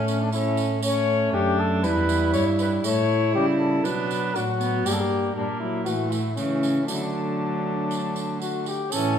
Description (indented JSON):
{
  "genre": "classical, renaissance-style consort dance",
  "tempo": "119 BPM",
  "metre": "4/4",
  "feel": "straight",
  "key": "D major",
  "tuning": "A4 = 440 Hz",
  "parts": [
    { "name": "dark cornet", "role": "melody", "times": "0.0-9.2 s", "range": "C#4 to C#5", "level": "-26 LUFS", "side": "left 4 dB", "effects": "none" },
    { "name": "warm viola", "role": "second line", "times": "0.0-9.2 s", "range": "A3 to E4", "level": "-27 LUFS", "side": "right 3 dB", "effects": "none" },
    { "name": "warm trombone", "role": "accompaniment", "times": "0.0-9.2 s", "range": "E3 to A3", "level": "-29 LUFS", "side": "left 1 dB", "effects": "none" },
    { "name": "rich cello", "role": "bass", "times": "0.0-9.2 s", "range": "E2 to D3", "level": "-27 LUFS", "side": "right 1 dB", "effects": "none" },
    { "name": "tambourine", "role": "percussion", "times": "0.1-9.2 s", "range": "none", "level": "-36 LUFS", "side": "right 6 dB", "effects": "none" }
  ],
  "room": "wet stone room reverb, RT60 1.2 s",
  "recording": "heard from further back in the room",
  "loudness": "-21 LUFS",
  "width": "side -8 dB against mid",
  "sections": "0.0-8.9 A section",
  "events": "none",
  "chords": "0.0 A; 1.8 Em; 2.8 A; 3.8 Bm; 4.9 Gm; 5.9 A; 6.9 D"
}